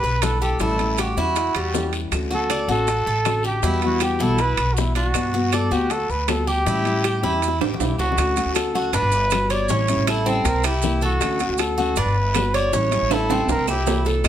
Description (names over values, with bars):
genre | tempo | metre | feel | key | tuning
latin, Cuban son and guajira | 158 BPM | 4/4 | straight | D major | A4 = 437 Hz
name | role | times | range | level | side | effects
breathy trumpet | melody | 0.0-14.3 s | E4 to D5 | -24 LUFS | equal | none
Cuban tres | arpeggios | 0.0-14.3 s | G3 to D5 | -26 LUFS | right 2 dB | none
upright bass | bass | 0.0-14.3 s | G1 to A2 | -24 LUFS | equal | none
maracas | percussion | 0.0-14.3 s | none | -35 LUFS | right 8 dB | none
nylon-string guitar | accompaniment | 0.2-14.3 s | B2 to F#4 | -26 LUFS | left 3 dB | none
bongos | percussion | 0.2-14.3 s | none | -31 LUFS | left 9 dB | none
guiro | percussion | 0.2-14.3 s | none | -35 LUFS | left 6 dB | none
timbales | percussion | 0.2-14.3 s | none | -28 LUFS | right 8 dB | none
claves | percussion | 2.1-14.3 s | none | -34 LUFS | right 6 dB | none
room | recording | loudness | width
light reverb | none | -18 LUFS | side -10 dB against mid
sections
0.0-8.2 A section; 8.2-14.3 B section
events
drum fill 7.2-8.2, 13.1-14.2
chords
0.0 Em7; 0.6 A7; 2.1 Dmaj7; 3.6 Emadd9; 5.1 Gmaj7; 6.7 A7; 8.2 Dmaj7; 8.9 Gmaj7; 9.7 A7; 10.5 C7; 11.2 Dmaj7; 12.0 Gmaj7; 12.7 A7; 13.5 C7